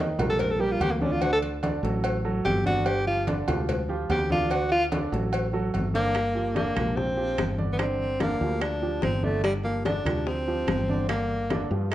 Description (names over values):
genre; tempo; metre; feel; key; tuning
Afro-Cuban jazz; 146 BPM; 4/4; straight; G minor; A4 = 440 Hz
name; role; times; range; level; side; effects
dark grand piano; accompaniment; 0.0-11.9 s; D3 to Eb5; -31 LUFS; right 3 dB; none
woody fretless electric bass; bass; 0.0-11.9 s; G1 to G2; -30 LUFS; equal; none
agogo bells and timbales; percussion; 0.2-11.9 s; none; -36 LUFS; right 4 dB; none
congas; percussion; 0.2-11.9 s; none; -33 LUFS; left 1 dB; none
cowbell and bongos; percussion; 0.2-11.9 s; none; -35 LUFS; left 5 dB; none
breathy tenor saxophone; melody; 0.3-11.9 s; G3 to Bb4; -27 LUFS; equal; none
room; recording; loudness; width
moderate large studio reverb, RT60 0.9 s; worn, warbling old tape, cassette tape, warbly pitch drift; -23 LUFS; side -13 dB against mid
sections
0.0-6.1 A section; 6.1-11.9 B section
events
tenor saxophone solo 0.0-6.1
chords
0.0 Eb; 1.2 D; 2.9 G5; 4.5 D; 6.1 Gm7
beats
0.40 0.81 | 1.22 1.63 2.04 2.45 | 2.86 3.27 3.68 4.09 | 4.50 4.92 5.33 5.74 | 6.15 6.56 6.97 7.38 | 7.79 8.21 8.62 9.03 | 9.44 9.86 10.27 10.68 | 11.09 11.51 11.92